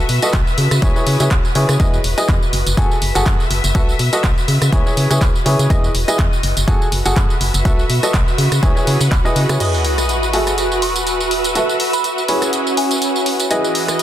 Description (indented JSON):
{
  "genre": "piano house",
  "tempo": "123 BPM",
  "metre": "4/4",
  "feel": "swing 55% on 16ths",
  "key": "E major",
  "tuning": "A4 = 438 Hz",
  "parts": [
    { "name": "organ-like FM bass", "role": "bass", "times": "0.0-9.6 s", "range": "E1 to C#3", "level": "-17 LUFS", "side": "equal", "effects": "sidechain pumping" },
    { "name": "rich studio string section", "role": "texture", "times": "0.0-14.0 s", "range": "E3 to E5", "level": "-22 LUFS", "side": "right 1 dB", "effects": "sidechain pumping" },
    { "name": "punchy analog drum machine", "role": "drums", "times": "0.1-14.0 s", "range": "crash cymbal, handclaps, hi-hat, rim click, tambourine", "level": "-22 LUFS", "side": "right 1 dB", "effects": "none" },
    { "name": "clear upright piano", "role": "riff", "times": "0.2-14.0 s", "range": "E4 to G#5", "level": "-21 LUFS", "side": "equal", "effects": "vintage 12-bit sampler grit, sidechain pumping, dub echo" },
    { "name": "electronic kick drum", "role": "drums", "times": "0.3-9.2 s", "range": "none", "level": "-16 LUFS", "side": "equal", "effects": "none" },
    { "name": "string machine, violins", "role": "sustained chords", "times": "9.6-14.0 s", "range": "F#4 to F#5", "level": "-24 LUFS", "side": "equal", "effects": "ensemble chorus, sidechain pumping" },
    { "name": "sub drop", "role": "sound effects", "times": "9.6-11.6 s", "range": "none", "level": "-22 LUFS", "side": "equal", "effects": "none" },
    { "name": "soft synth bell", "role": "melody", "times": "10.8-13.5 s", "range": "G#5 to C#6", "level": "-24 LUFS", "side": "right 1 dB", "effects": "chorus, phaser, dub echo" }
  ],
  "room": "light reverb",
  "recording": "dense, heavily limited modern master",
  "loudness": "-13 LUFS",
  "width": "side -12 dB against mid",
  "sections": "0.0-9.6 A section; 9.6-14.0 B section",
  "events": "impact 9.6-11.6",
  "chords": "0.0 B7sus4; 0.6 C#m7; 1.8 Emaj7; 2.5 F#m9; 3.7 B7sus4; 4.5 C#m7; 5.7 Emaj7; 6.4 F#m9; 7.7 B7sus4; 8.4 C#m7; 9.6 Emaj7; 10.3 F#m9; 11.6 B7sus4; 12.3 C#m7; 13.5 Emaj7"
}